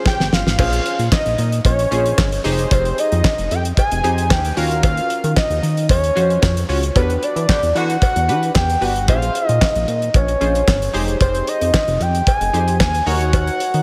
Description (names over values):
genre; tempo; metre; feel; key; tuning
early-eighties boogie funk; 113 BPM; 4/4; straight; unclear; A4 = 440 Hz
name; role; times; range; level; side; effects
funky polysynth comp; accompaniment; 0.0-13.8 s; Db4 to Db5; -28 LUFS; equal; chorus, slapback echo
fat analog lead; melody; 0.1-13.8 s; B4 to Ab5; -22 LUFS; equal; chorus
damped 70s drum kit; drums; 0.1-13.8 s; crash cymbal, handclaps, hi-hat, kick drum, snare drum; -21 LUFS; equal; none
cowbell; percussion; 0.1-13.5 s; none; -32 LUFS; equal; none
chorused synth bass; bass; 0.2-13.8 s; F1 to E3; -22 LUFS; equal; none
clear horn section; second line; 7.5-7.9 s; D3 to G4; -30 LUFS; equal; none
room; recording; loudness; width
moderate lush hall reverb, RT60 2.7 s; big arena sound; -17 LUFS; mono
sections
0.6-13.8 A section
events
drum fill 0.0-0.6; band accent 7.0-9.1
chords
0.0 Bbm9 (rootless); 0.6 Bbm9; 2.4 Fm9; 4.6 Ebm9; 7.0 Em9; 9.1 Bbm9; 10.9 Fm9; 13.1 Ebm7